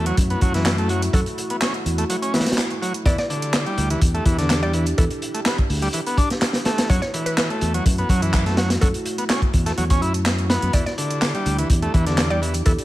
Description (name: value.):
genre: breakbeat, breaks.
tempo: 125 BPM.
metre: 4/4.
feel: straight.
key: E minor.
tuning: A4 = 437 Hz.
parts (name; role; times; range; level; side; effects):
dark analog pad; sustained chords; 0.0-12.8 s; A3 to G4; -29 LUFS; right 1 dB; chorus, sidechain pumping.
overdriven combo organ; riff; 0.0-12.7 s; D3 to E4; -25 LUFS; equal; vintage 12-bit sampler grit, tape echo.
fingered electric bass; bass; 0.0-12.7 s; D2 to F#2; -22 LUFS; equal; none.
house drum kit; drums; 0.1-12.8 s; handclaps, hi-hat; -29 LUFS; right 1 dB; none.
crunchy breakbeat drum kit; drums; 0.2-12.8 s; hi-hat, kick drum, snare drum; -21 LUFS; equal; none.
mallet-like synth pluck; melody; 1.1-12.8 s; A4 to D5; -31 LUFS; equal; chorus, small speaker sound, tape echo.
room: small room ambience.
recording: vinyl crackle.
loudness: -18 LUFS.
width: side -16 dB against mid.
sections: 0.0-12.8 A section.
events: none.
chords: 0.0 F#m7; 3.1 Em7; 6.9 F#m7; 10.7 Em7.